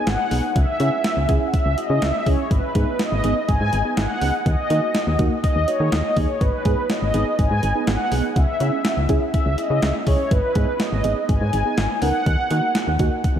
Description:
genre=synth-pop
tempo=123 BPM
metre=4/4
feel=straight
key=G# minor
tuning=A4 = 439 Hz
part: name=mellow synth brass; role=melody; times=0.0-13.4 s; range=B4 to G#5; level=-23 LUFS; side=equal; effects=chorus, analog delay
part: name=soft electric-piano-like synth keys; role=accompaniment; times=0.0-13.1 s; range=A#3 to A#4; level=-26 LUFS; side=right 2 dB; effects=chorus, phaser
part: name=solid FM bass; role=bass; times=0.1-13.4 s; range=G#1 to D#3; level=-22 LUFS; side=equal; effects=none
part: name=clean 12-bit digital drum machine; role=drums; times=0.1-13.4 s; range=hi-hat, kick drum, snare drum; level=-23 LUFS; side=equal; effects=overdrive
room=moderate cathedral reverb, RT60 6.4 s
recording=dreamy mix soaked in reverb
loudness=-18 LUFS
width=side -9 dB against mid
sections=0.0-13.4 A section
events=none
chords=0.0 G#m; 0.6 C#m; 2.5 G#m; 4.5 D#m; 6.4 G#m; 8.4 C#m; 10.3 G#m; 12.3 D#m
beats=0.07 | 0.56 1.05 1.53 2.02 | 2.51 3.00 3.48 3.97 | 4.46 4.95 5.44 5.92 | 6.41 6.90 7.39 7.88 | 8.36 8.85 9.34 9.83 | 10.31 10.80 11.29 11.78 | 12.27 12.75 13.24

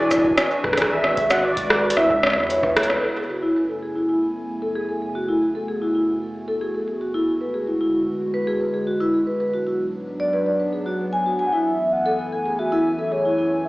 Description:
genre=IDM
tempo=113 BPM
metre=4/4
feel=straight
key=F# minor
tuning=A4 = 439 Hz
part: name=warm velvety synth lead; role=melody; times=0.0-2.7, 11.5-13.7 s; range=C#5 to G#5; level=-23 LUFS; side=equal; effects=chorus, digital delay
part: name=warbly tape-like pad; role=sustained chords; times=0.0-13.7 s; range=E2 to G#5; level=-28 LUFS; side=equal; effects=chorus, built-in reverb
part: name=vibraphone with soft mallets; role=arpeggios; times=0.0-13.5 s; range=E4 to G#5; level=-22 LUFS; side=equal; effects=vintage 12-bit sampler grit, low-pass filter, digital delay
part: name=warm sub bass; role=bass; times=0.0-3.0 s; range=D1 to E2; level=-36 LUFS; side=equal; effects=none
part: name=electro analog drum machine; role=drums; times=0.1-3.0 s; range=cabasa, hi-hat, rim click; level=-20 LUFS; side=equal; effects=overdrive, digital delay
part: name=electronic kick drum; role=drums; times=0.1-2.7 s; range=none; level=-35 LUFS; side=equal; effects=overdrive
room=moderate plate reverb, RT60 2.1 s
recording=played on a big sound system in a bare room, large studio reverb, AM radio sound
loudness=-19 LUFS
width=side -20 dB against mid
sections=0.0-3.0 A section; 3.0-13.7 B section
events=drum fill 2.8; band accent 2.8; filter sweep on vibraphone 3.0-13.7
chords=0.0 E9; 0.9 G#m7b5; 2.0 C#m7; 3.0 F#m11; 7.3 E9; 9.4 G#m7b5; 11.5 F#m11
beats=0.38 | 0.91 1.44 1.97 2.50 | 3.03 3.56 4.09 4.62 | 5.15 5.68 6.22 6.75 | 7.28 7.81 8.34 8.87 | 9.40 9.93 10.46 10.99 | 11.53 12.06 12.59 13.12 | 13.65

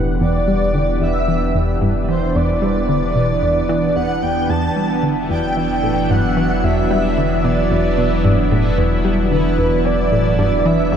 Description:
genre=ambient, sequencer-driven space music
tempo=112 BPM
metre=4/4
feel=straight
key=E minor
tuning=A4 = 439 Hz
part: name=lush unison pad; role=sustained chords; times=0.0-11.0 s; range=E3 to F#5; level=-19 LUFS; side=right 2 dB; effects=chorus
part: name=tight sequenced synth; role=riff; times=0.0-11.0 s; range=E2 to G3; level=-20 LUFS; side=left 1 dB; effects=chorus, ping-pong delay
part: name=warm sub bass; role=bass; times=0.0-11.0 s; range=E1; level=-23 LUFS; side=left 1 dB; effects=none
part: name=bubbling stepped-filter texture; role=texture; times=0.0-11.0 s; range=B3 to B4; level=-32 LUFS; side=left 1 dB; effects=chorus, built-in reverb
part: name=breathy flute-like synth lead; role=melody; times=0.2-11.0 s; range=B4 to A5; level=-21 LUFS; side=right 1 dB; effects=tremolo, ensemble chorus, ping-pong delay
room=wet cathedral reverb, RT60 6.2 s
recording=in a vast, echoing space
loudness=-14 LUFS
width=side -8 dB against mid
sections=0.0-11.0 A section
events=fade-in on synth texture 0.0-11.0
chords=0.0 Em7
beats=| 0.21 0.74 1.28 1.82 | 2.35 2.89 3.42 3.96 | 4.50 5.03 5.57 6.10 | 6.64 7.17 7.71 8.24 | 8.78 9.32 9.85 10.39 | 10.92

